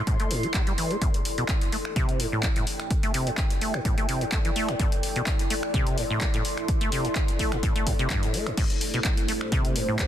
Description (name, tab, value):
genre	acid house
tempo	127 BPM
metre	4/4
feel	swing 54% on 16ths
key	A minor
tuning	A4 = 440 Hz
part	deep acid bass	riff	0.0-10.0 s	G2 to C4	-29 LUFS	equal	wide subtle chorus, sidechain pumping, ping-pong delay
part	deep dark ambient pad	texture	0.0-10.1 s	E4 to C6	-32 LUFS	equal	chorus, built-in reverb, sidechain pumping
part	electronic kick drum	drums	0.1-10.1 s	none	-26 LUFS	equal	none
part	punchy analog drum machine	drums	0.1-10.1 s	crash cymbal, finger snaps, handclaps, hi-hat	-31 LUFS	left 1 dB	soft clipping on snare
part	dark analog pad	sustained chords	8.8-10.1 s	A3 to C5	-32 LUFS	right 2 dB	chorus, sidechain pumping
room	light reverb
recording	dense, heavily limited modern master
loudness	-23 LUFS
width	side -11 dB against mid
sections	0.0-10.1 A section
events	none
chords	0.0 Am7